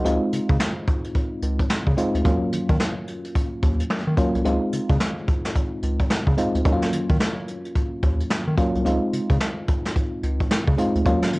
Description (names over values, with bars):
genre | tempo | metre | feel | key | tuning
R&B, new jack swing | 109 BPM | 4/4 | swing 62% on 16ths | unclear | A4 = 440 Hz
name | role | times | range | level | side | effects
FM electric piano with auto-pan | accompaniment | 0.0-11.4 s | Gb3 to Gb4 | -24 LUFS | equal | cassette tape
round analog bass | bass | 0.0-11.4 s | C2 to Eb3 | -24 LUFS | equal | none
jazz brush drum kit | drums | 0.0-11.4 s | hi-hat, kick drum, snare drum | -23 LUFS | equal | cassette tape
room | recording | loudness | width
light reverb | home recording on cassette | -20 LUFS | side -24 dB against mid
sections
0.0-11.4 A section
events
none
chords
0.0 Dbmaj7; 2.3 Ebm9; 4.5 Dbmaj7; 6.7 Ebm9; 8.9 Dbmaj7